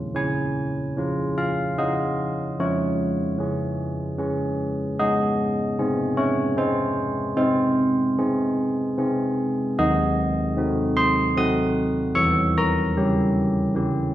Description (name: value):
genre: classical, tune for church bells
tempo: 75 BPM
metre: 3/4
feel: straight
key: Db major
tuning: A4 = 440 Hz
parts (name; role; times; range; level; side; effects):
- carillon bells; solo; 0.0-14.1 s; Eb3 to Eb6; -20 LUFS; equal; none
room: wet recital hall reverb, RT60 1.4 s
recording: heard from further back in the room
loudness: -20 LUFS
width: side -13 dB against mid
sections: 0.2-14.1 A section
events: none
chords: 0.2 Db; 2.6 Db/F; 5.0 Ab; 7.4 Ab/C; 9.8 Cdim/Eb; 12.2 Edim7